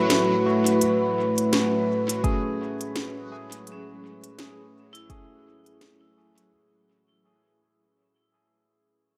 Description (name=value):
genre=ambient dub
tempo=84 BPM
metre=4/4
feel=swing 58% on 16ths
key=F# minor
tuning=A4 = 441 Hz
part: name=deep dark ambient pad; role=sustained chords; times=0.0-6.5 s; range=A3 to E5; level=-29 LUFS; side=equal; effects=chorus, built-in reverb
part: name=vibraphone with hard mallets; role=arpeggios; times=0.0-6.8 s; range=C#4 to B5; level=-30 LUFS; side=equal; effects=dub echo
part: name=barky tine electric piano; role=stabs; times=0.0-6.5 s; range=A3 to G#4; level=-33 LUFS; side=equal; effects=phaser, dub echo
part: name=backwards swelling texture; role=texture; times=0.0-6.5 s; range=F#3 to F#4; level=-37 LUFS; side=equal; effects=built-in reverb
part: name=organic electronic drum kit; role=drums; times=0.1-6.5 s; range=hi-hat, snare drum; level=-29 LUFS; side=equal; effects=overdrive, dub echo
part: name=electronic kick drum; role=drums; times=2.2-5.3 s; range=none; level=-28 LUFS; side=equal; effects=none
room=moderate huge ambient reverb, RT60 8.1 s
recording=none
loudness=-23 LUFS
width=mono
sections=0.0-6.5 A section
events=fade-out 0.0-6.5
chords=0.0 F#m7